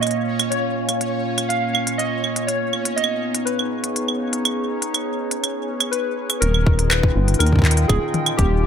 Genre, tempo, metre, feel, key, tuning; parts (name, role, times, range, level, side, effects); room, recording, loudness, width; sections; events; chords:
IDM; 122 BPM; 4/4; straight; Ab melodic minor; A4 = 439 Hz
warbly lo-fi synth keys; melody; 0.0-8.7 s; G4 to F5; -25 LUFS; left 1 dB; chorus, vintage 12-bit sampler grit, tape echo
warbly tape-like pad; sustained chords; 0.0-8.7 s; Bb2 to G5; -25 LUFS; right 1 dB; chorus, built-in reverb
organic electronic drum kit; drums; 0.0-8.5 s; claves, handclaps, hi-hat, toms; -22 LUFS; right 2 dB
bubbling stepped-filter texture; texture; 0.0-8.7 s; Db4 to Eb5; -30 LUFS; equal; chorus, built-in reverb, sidechain pumping
deep acid bass; bass; 6.4-8.7 s; Eb1 to Eb2; -17 LUFS; equal
electronic kick drum; drums; 6.7-8.5 s; -18 LUFS; equal
light reverb; -18 LUFS; side -8 dB against mid
0.0-6.4 A section; 6.4-8.7 B section
filter sweep on ambient pad 0.0-6.4
0.0 Bbm; 2.5 Abm; 6.4 Eb7